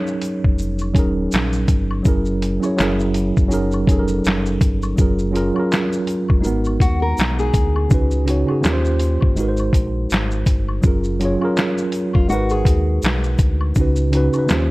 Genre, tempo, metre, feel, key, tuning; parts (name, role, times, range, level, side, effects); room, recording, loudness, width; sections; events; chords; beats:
lo-fi hip hop; 82 BPM; 4/4; swing 57% on 16ths; F# major; A4 = 441 Hz
mellow tine electric piano; accompaniment; 0.0-14.7 s; C#3 to C#5; -20 LUFS; right 1 dB; medium stereo tremolo, cassette tape, low-pass filter
lo-fi sampler-style drum kit; drums; 0.1-14.7 s; handclaps, hi-hat, kick drum, shaker, snare drum; -18 LUFS; equal
tube shaker and woodblock; percussion; 0.2-14.7 s; -36 LUFS; left 4 dB
sub bass with octave; bass; 0.5-14.7 s; D#1 to D#2; -21 LUFS; equal
nylon-string guitar; second line; 6.8-13.6 s; E#4 to A#4; -24 LUFS; left 2 dB; low-pass filter, analog delay
little or no reverb; -16 LUFS; side -20 dB against mid
0.0-5.0 A section; 5.0-14.7 B section
0.0 F#69; 2.1 F#9; 3.5 F#69; 5.0 F#maj9; 6.4 G#m7; 7.9 C#9sus4; 8.6 D#13; 9.4 G#7; 10.8 F#maj9; 12.3 G#m7; 13.8 C#9sus4
0.59 1.32 | 2.05 2.79 3.52 4.25 | 4.98 5.71 6.44 7.18 | 7.91 8.64 9.37 10.10 | 10.84 11.57 12.30 13.03 | 13.76 14.49